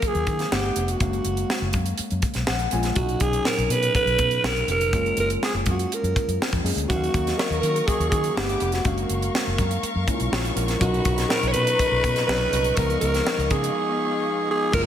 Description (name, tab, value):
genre	polished 1980s jazz-funk pop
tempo	122 BPM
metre	4/4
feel	straight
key	F# major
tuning	A4 = 438 Hz
part	growling alto saxophone	melody	0.0-14.8 s	F#4 to C#5	-24 LUFS	right 1 dB	slapback echo
part	overdriven tine electric piano	accompaniment	0.0-14.9 s	A#2 to G#5	-29 LUFS	left 2 dB	lush chorus, slapback echo
part	tight funk drum kit	drums	0.0-14.9 s	crash cymbal, hi-hat, kick drum, snare drum	-26 LUFS	equal	none
part	vintage muted fingered electric bass	bass	0.1-14.9 s	E#1 to D#3	-26 LUFS	left 1 dB	none
part	warm studio string section	sustained chords	6.9-14.9 s	B3 to D6	-30 LUFS	left 2 dB	none
room	moderate lush hall reverb, RT60 1.8 s, small room reverb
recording	big arena sound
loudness	-20 LUFS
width	side -10 dB against mid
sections	0.0-14.7 A section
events	tine electric piano fill 2.2-3.0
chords	0.0 D#m7; 0.5 Gmaj7; 1.0 F#maj7; 3.0 Bmaj9; 4.9 F#maj7; 6.9 D#m7; 8.4 Gmaj7; 8.9 F#maj7; 10.8 Bmaj9; 12.8 C#9